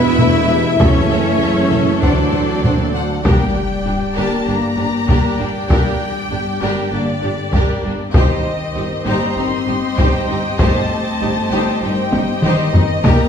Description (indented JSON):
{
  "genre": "cinematic, epic orchestral film score",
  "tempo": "98 BPM",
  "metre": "4/4",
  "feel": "straight",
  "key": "G minor from 3.2 s",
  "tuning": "A4 = 440 Hz",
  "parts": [
    { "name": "clear symphonic violin section", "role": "melody", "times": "0.0-13.3 s", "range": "C#5 to C6", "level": "-24 LUFS", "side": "left 3 dB", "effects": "none" },
    { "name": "clear symphonic viola section", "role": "accompaniment", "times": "0.0-13.3 s", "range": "F#3 to Eb4", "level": "-24 LUFS", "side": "right 1 dB", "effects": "none" },
    { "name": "clear symphonic string section", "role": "sustained chords", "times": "0.0-13.3 s", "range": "C4 to G5", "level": "-24 LUFS", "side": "left 1 dB", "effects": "none" },
    { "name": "mellow French horn section", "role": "sustained chords", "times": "0.0-13.3 s", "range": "D3 to E4", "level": "-23 LUFS", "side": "left 4 dB", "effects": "none" },
    { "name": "warm trombone section", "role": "sustained chords", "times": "0.0-13.3 s", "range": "B2 to C4", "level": "-27 LUFS", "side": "right 2 dB", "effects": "none" },
    { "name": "mellow tuba", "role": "bass", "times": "0.0-3.2 s", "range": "E1 to D2", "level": "-22 LUFS", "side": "right 3 dB", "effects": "none" },
    { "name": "rich symphonic cello section", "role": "bass", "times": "0.0-13.1 s", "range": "G2 to E4", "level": "-25 LUFS", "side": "right 2 dB", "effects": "none" },
    { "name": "rich symphonic double bass section", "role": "bass", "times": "0.0-13.1 s", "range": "G1 to F#2", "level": "-24 LUFS", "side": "right 2 dB", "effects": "none" },
    { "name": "clear symphonic violin section", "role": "second line", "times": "0.2-13.3 s", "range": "Bb3 to F#5", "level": "-25 LUFS", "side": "left 1 dB", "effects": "none" },
    { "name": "taiko ensemble", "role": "drums", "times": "0.2-13.3 s", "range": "none", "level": "-16 LUFS", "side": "equal", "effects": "none" },
    { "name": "sub drop", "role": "sound effects", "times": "3.4-5.7 s", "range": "none", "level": "-27 LUFS", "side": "left 1 dB", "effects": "none" }
  ],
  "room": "wet recital hall reverb, RT60 1.4 s",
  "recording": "heard from further back in the room",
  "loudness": "-14 LUFS",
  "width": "side -8 dB against mid",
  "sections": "0.0-3.2 A section; 3.2-13.3 B section",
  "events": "impact 3.2-5.7; drum fill 12.1-13.0",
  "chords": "0.0 Em; 0.8 F#m7; 2.0 D7; 3.2 Gm; 8.1 Cm/G"
}